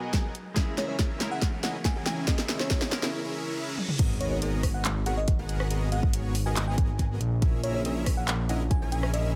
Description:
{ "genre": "future bass", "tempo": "140 BPM", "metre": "4/4", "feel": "half-time", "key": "G# minor", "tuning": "A4 = 439 Hz", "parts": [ { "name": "bell-like FM electric piano", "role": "melody", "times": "0.0-9.4 s", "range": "C#5 to G#5", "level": "-39 LUFS", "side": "equal", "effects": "chorus, sidechain pumping, digital delay" }, { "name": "direct-recorded clean electric guitar", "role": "accompaniment", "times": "0.0-3.1 s", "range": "F#3 to A#4", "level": "-43 LUFS", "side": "equal", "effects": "none" }, { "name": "ethereal airy pad", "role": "sustained chords", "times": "0.0-3.1 s", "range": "E3 to A#4", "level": "-45 LUFS", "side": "equal", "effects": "none" }, { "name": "dense compressed supersaw", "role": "riff", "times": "0.0-9.3 s", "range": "B3 to G#5", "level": "-38 LUFS", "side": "equal", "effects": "sidechain pumping, low-pass filter, digital delay" }, { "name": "riser, reverse cymbal and sub drop", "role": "sound effects", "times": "0.4-5.7 s", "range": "none", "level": "-43 LUFS", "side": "equal", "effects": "none" }, { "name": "electronic kick drum", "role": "drums", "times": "0.1-8.8 s", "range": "none", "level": "-28 LUFS", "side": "equal", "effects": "none" }, { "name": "pop drum kit", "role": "drums", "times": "0.1-9.2 s", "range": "crash cymbal, handclaps, hi-hat, rim click, snare drum, toms", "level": "-34 LUFS", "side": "equal", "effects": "none" }, { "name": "fat analog bass", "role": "bass", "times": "4.0-9.4 s", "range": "G#1 to A#1", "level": "-31 LUFS", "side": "equal", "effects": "tube saturation, sidechain pumping" } ], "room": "light reverb, digital ambience", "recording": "none", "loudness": "-28 LUFS", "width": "mono", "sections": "0.0-4.0 A section; 4.0-9.4 B section", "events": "build-up 0.0-4.0; drum fill 0.0-3.1, 3.8; break 3.1-4.0; reverse cymbal 3.1-4.0; drop 4.0-9.4; impact 4.0-5.7", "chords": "0.4 A#m7b5; 3.8 N.C.; 4.0 G#m9; 7.2 A#m7b5", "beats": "0.14 | 0.56 0.99 1.42 1.85 | 2.28 2.71 3.14 3.56 | 3.99 4.42 4.85 5.28 | 5.71 6.14 6.57 6.99 | 7.42 7.85 8.28 8.71 | 9.14" }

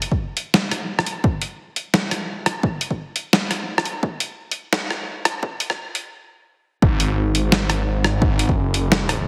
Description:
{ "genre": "half-time drum and bass", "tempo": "172 BPM", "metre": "4/4", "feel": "swing 56% on 16ths, half-time", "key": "unclear", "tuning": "A4 = 438 Hz", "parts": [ { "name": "boom bap sampler-style drum kit", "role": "drums", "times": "0.0-9.2 s", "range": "hi-hat, rim click, snare drum", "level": "-23 LUFS", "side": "equal", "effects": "small room ambience" }, { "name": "electronic kick drum", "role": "drums", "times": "0.1-8.6 s", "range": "none", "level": "-22 LUFS", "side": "equal", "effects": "small room ambience" }, { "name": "phased detuned saw bass", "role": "bass", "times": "6.8-9.3 s", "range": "F#1 to G#1", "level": "-23 LUFS", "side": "equal", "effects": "phaser" } ], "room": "moderate lush hall reverb, RT60 1.6 s", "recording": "heavily compressed radio sound, high-pass filter", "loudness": "-22 LUFS", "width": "mono", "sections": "0.0-6.8 A section; 6.8-9.3 B section", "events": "build-up 0.0-6.8; stop 6.1-6.8; drop 6.8-9.3", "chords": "none", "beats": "0.20 0.54 0.89 | 1.24 1.59 1.94 2.29 | 2.64 2.99 3.33 3.68 | 4.03 4.38 4.73 5.08 | 5.43 5.78 6.13 6.47 | 6.82 7.17 7.52 7.87 | 8.22 8.57 8.92" }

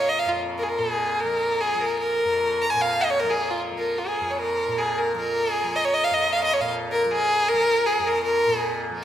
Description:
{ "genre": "indian classical, Hindustani", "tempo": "153 BPM", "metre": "4/4", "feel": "straight", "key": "F raga malkauns", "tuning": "A4 = 439 Hz", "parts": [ { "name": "clear violin", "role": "melody", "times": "0.0-8.8 s", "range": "F4 to Bb5", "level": "-21 LUFS", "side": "equal", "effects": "none" }, { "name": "tanpura", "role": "drone", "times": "0.0-9.0 s", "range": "F2 to F3", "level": "-31 LUFS", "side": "right 1 dB", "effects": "none" } ], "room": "wet scoring stage reverb, RT60 1.5 s", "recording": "none", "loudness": "-21 LUFS", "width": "side -11 dB against mid", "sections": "0.0-9.0 A section", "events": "speeding up 0.0-9.0", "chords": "none", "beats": "| 0.39 0.80 1.20 1.60 | 2.00 2.40 2.80 3.19 | 3.59 3.98 4.38 4.77 | 5.16 5.55 5.94 6.32 | 6.71 7.09 7.48 7.86 | 8.24 8.62 9.00" }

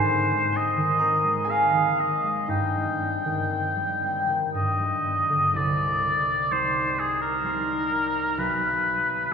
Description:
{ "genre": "classical, romantic duo for oboe and harp", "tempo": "58-66 BPM", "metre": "3/4", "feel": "rubato", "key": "C minor", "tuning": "A4 = 441 Hz", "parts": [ { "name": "clear oboe", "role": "melody", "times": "0.0-9.3 s", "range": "Ab4 to G5", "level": "-24 LUFS", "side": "left 1 dB", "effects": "none" }, { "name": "concert harp", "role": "accompaniment", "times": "0.0-9.3 s", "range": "B1 to C6", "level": "-26 LUFS", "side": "right 1 dB", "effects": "none" } ], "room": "wet cathedral reverb, RT60 4.2 s", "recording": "minimal, uncompressed stereo recording", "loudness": "-22 LUFS", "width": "side -6 dB against mid", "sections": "0.0-5.5 A section; 5.5-9.3 B section", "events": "none", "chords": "0.0 Ab; 2.5 Cm/G; 4.5 G; 5.5 Cm; 8.4 G/B", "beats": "0.55 1.49 | 2.50 3.52 4.54 | 5.54 6.50 7.44 | 8.37 9.30" }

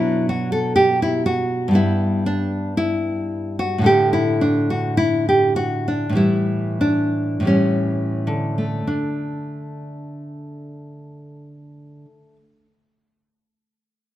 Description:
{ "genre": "classical, baroque-style dance for nylon-string guitar", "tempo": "42-64 BPM", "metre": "4/4", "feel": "rubato", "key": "D major", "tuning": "A4 = 439 Hz", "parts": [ { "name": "nylon-string guitar", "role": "solo", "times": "0.0-12.7 s", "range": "G2 to A4", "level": "-18 LUFS", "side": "equal", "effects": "none" } ], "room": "moderate recital hall reverb, RT60 1.5 s", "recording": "none", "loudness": "-17 LUFS", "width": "side -13 dB against mid", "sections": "0.0-8.9 A section; 8.9-14.2 B section", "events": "slowing down 0.0-8.9", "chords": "0.0 Bm; 3.9 Asus4; 6.2 A7; 8.9 D5", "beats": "0.78 1.77 2.79 | 3.86 4.98 6.17 7.46 | 8.87 10.28 11.69" }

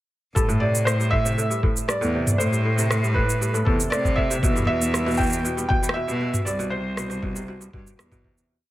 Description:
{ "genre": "folktronica", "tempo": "118 BPM", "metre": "4/4", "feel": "straight", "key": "A minor", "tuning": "A4 = 439 Hz", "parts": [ { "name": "felt-muted upright piano", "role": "melody", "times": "0.3-7.2 s", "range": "A4 to G5", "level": "-27 LUFS", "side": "equal", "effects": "tape echo" }, { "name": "kora", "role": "arpeggios", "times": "0.4-8.5 s", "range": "G2 to E3", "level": "-29 LUFS", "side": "equal", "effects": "low-pass filter, tape echo" }, { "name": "bright cello", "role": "bass", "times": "0.4-8.4 s", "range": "C2 to C3", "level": "-24 LUFS", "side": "equal", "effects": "none" }, { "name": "electronic kick drum", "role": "drums", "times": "0.4-8.3 s", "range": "none", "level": "-24 LUFS", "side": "equal", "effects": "none" }, { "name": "minimal click drum kit", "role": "drums", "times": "0.4-8.5 s", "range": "rim click, shaker, toms", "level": "-27 LUFS", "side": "right 1 dB", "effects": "overdrive" } ], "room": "small room ambience", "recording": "none", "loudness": "-20 LUFS", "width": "side -15 dB against mid", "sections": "0.4-8.5 groove", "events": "fade-out 5.8-8.5", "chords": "0.4 Am7; 4.4 Em; 6.5 Cmaj7", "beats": "| 0.36 0.87 1.38 1.89 | 2.39 2.90 3.41 3.92 | 4.43 4.94 5.45 5.95 | 6.46 6.97 7.48 7.99" }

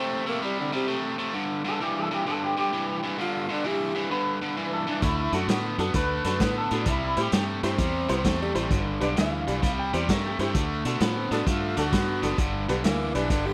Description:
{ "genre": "electric blues shuffle", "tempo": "130 BPM", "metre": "4/4", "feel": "swing 66% on 8ths", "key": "G major", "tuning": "A4 = 444 Hz", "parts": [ { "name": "warm tenor saxophone", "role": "second line", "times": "0.0-4.0, 7.6-13.5 s", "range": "C3 to G4", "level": "-33 LUFS", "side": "equal", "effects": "none" }, { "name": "overdriven electric guitar", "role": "riff", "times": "0.0-13.5 s", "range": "G2 to B3", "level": "-31 LUFS", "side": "equal", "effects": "none" }, { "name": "electric guitar through a small old amp", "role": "melody", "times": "1.7-10.6 s", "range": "D4 to G5", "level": "-32 LUFS", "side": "equal", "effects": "lush chorus" }, { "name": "fingered electric bass", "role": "bass", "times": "5.0-13.5 s", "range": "F#1 to B2", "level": "-32 LUFS", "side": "equal", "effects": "none" }, { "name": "vintage drum kit", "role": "drums", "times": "5.0-13.4 s", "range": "hi-hat, kick drum, snare drum", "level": "-30 LUFS", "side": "equal", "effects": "none" }, { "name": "honky-tonk upright piano", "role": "accompaniment", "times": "5.3-13.2 s", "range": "D4 to D5", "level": "-33 LUFS", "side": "equal", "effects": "none" } ], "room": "light reverb", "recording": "none", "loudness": "-26 LUFS", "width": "mono", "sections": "0.0-12.4 A section; 12.4-13.5 B section", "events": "tenor saxophone solo 12.4-13.5", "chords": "0.0 C5; 1.3 G5; 5.0 D; 6.9 C; 8.7 G; 9.6 C; 10.5 D; 12.4 G", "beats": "0.42 0.88 | 1.34 1.80 2.26 2.72 | 3.18 3.65 4.11 4.57 | 5.03 5.49 5.95 6.41 | 6.87 7.33 7.79 8.25 | 8.71 9.17 9.63 10.09 | 10.55 11.01 11.47 11.93 | 12.39 12.85 13.31" }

